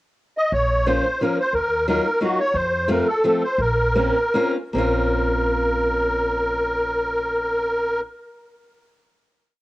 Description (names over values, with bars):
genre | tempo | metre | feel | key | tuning
musette waltz | 144-179 BPM | 3/4 | straight | Bb harmonic minor | A4 = 440 Hz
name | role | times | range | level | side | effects
musette accordion | melody | 0.4-8.0 s | Gb4 to Eb5 | -20 LUFS | equal | cassette tape
upright bass | bass | 0.5-8.0 s | Bb1 to F2 | -27 LUFS | equal | tube saturation
picked steel-string acoustic guitar | accompaniment | 0.9-8.0 s | F3 to F4 | -24 LUFS | left 1 dB | cassette tape
room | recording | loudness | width
light reverb, small room ambience | home recording on cassette | -18 LUFS | side -17 dB against mid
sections
0.0-0.5 pickup bar; 0.5-4.8 A section; 4.8-7.2 final chord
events
slowing down 2.5-4.8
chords
0.0 N.C.; 0.5 Bbm; 1.5 Ebmadd9; 2.5 F; 3.6 Bbmadd9